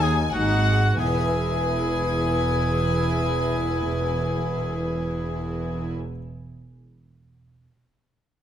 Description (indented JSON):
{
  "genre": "classical, baroque-style concerto movement with solo episodes",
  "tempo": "free time",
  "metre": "none",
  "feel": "none",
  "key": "E major",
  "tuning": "A4 = 441 Hz",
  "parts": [
    { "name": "mellow oboe", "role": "melody", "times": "0.0-5.9 s", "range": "F#4 to G#4", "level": "-30 LUFS", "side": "left 2 dB", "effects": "none" },
    { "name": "warm chamber violin section", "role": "melody", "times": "0.0-5.9 s", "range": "F#5 to G#5", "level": "-31 LUFS", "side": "left 6 dB", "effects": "none" },
    { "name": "rich chamber violin section", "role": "second line", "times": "0.0-5.9 s", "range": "B4 to G#5", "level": "-30 LUFS", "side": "left 2 dB", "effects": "none" },
    { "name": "harpsichord", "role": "accompaniment", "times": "0.0-6.2 s", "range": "D#2 to E5", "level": "-36 LUFS", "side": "left 1 dB", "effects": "none" },
    { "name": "warm studio viola section", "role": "accompaniment", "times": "0.0-5.9 s", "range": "D#4 to E4", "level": "-30 LUFS", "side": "equal", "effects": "none" },
    { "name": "rich chamber cello section", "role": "bass", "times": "0.0-5.9 s", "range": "D#2 to G#2", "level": "-28 LUFS", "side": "right 2 dB", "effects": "none" },
    { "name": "warm chamber double bass section", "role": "bass", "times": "0.0-5.9 s", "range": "E1 to D#2", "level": "-27 LUFS", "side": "right 2 dB", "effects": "none" }
  ],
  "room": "moderate recital hall reverb, RT60 1.7 s",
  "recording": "close, detailed microphones",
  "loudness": "-21 LUFS",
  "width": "side -10 dB against mid",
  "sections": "1.0-6.2 A section",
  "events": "none",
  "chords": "0.0 B7 (rootless); 1.0 E"
}